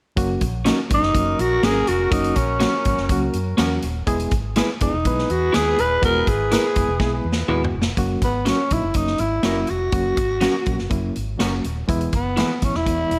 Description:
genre	uptempo 1960s-style soul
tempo	123 BPM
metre	4/4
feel	straight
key	F# mixolydian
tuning	A4 = 440 Hz
part	mellow reed electric piano	accompaniment	0.2-13.1 s	E3 to B4	-28 LUFS	equal	fast tremolo
part	vintage muted fingered electric bass	bass	0.2-13.2 s	D#1 to F#2	-28 LUFS	equal	none
part	swinging big-band drum kit	drums	0.2-13.2 s	hi-hat, kick drum, snare drum, toms	-26 LUFS	equal	none
part	electric guitar through a small old amp	stabs	0.6-12.5 s	C#4 to B4	-29 LUFS	equal	none
part	growling tenor saxophone	melody	0.9-13.2 s	B3 to B4	-24 LUFS	equal	none
part	warm horn section	second line	1.1-7.7 s	C#4 to B4	-31 LUFS	equal	none
room	light reverb, small room ambience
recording	vinyl crackle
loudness	-21 LUFS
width	mono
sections	0.2-8.0 A section; 8.0-13.2 B section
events	drum fill 7.0-8.0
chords	0.2 F#; 4.1 E; 8.0 F#; 11.9 E

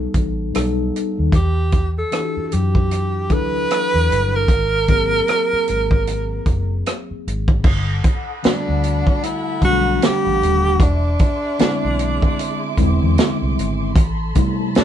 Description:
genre	R&B, neo-soul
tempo	76 BPM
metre	4/4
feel	swing 58% on 16ths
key	G major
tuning	A4 = 436 Hz
part	breathy tenor saxophone	melody	0.0-14.8 s	D4 to B4	-20 LUFS	right 2 dB	none
part	mellow tine electric piano	accompaniment	0.0-14.8 s	C3 to A4	-24 LUFS	left 2 dB	medium stereo tremolo
part	vintage muted fingered electric bass	bass	0.0-14.8 s	Eb1 to F#2	-20 LUFS	equal	none
part	warm soul drum kit	drums	0.1-14.8 s	crash cymbal, hi-hat, kick drum, rim click, snare drum	-17 LUFS	equal	none
part	dark studio string section	sustained chords	7.6-14.8 s	G#4 to D6	-28 LUFS	equal	none
room	moderate studio reverb, RT60 0.6 s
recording	band playing live in one room, nothing above 10.7 kHz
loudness	-16 LUFS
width	side -10 dB against mid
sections	0.0-7.6 A section; 7.6-14.8 B section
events	none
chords	0.0 B7b13; 1.3 Em9; 4.5 Ab9; 7.6 Gmaj9; 10.8 E7b13; 14.0 Am9

